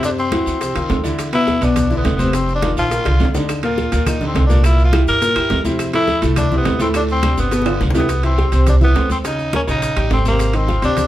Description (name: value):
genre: latin, salsa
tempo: 208 BPM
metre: 4/4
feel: straight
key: unclear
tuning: A4 = 441 Hz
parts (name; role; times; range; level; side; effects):
- bright upright piano; accompaniment; 0.0-11.1 s; A2 to C6; -20 LUFS; left 1 dB; none
- upright bass; bass; 0.0-11.1 s; F1 to G2; -18 LUFS; equal; none
- bongos; percussion; 0.0-11.1 s; none; -29 LUFS; left 3 dB; none
- congas; percussion; 0.0-11.1 s; none; -25 LUFS; equal; none
- guiro; percussion; 0.0-11.1 s; none; -34 LUFS; right 4 dB; none
- maracas; percussion; 0.0-11.1 s; none; -36 LUFS; left 2 dB; none
- timbales; percussion; 0.0-11.1 s; none; -27 LUFS; right 5 dB; none
- growling tenor saxophone; melody; 0.1-11.1 s; Bb3 to Bb4; -20 LUFS; left 1 dB; plate reverb
- claves; percussion; 3.5-7.8 s; none; -33 LUFS; left 2 dB; none
room: wet small room reverb, RT60 0.5 s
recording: heard from further back in the room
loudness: -14 LUFS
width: side -14 dB against mid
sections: 0.0-8.1 A section; 8.1-11.1 B section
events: drum fill 3.1-3.5, 7.5-8.1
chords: 0.0 F5; 1.2 E5; 2.3 F5; 2.9 Bb; 3.5 Ebsus2; 4.6 C7; 5.8 Fmaj7; 6.9 D5; 7.5 G6; 8.1 Cmaj7; 9.2 Eb7; 10.4 Ab69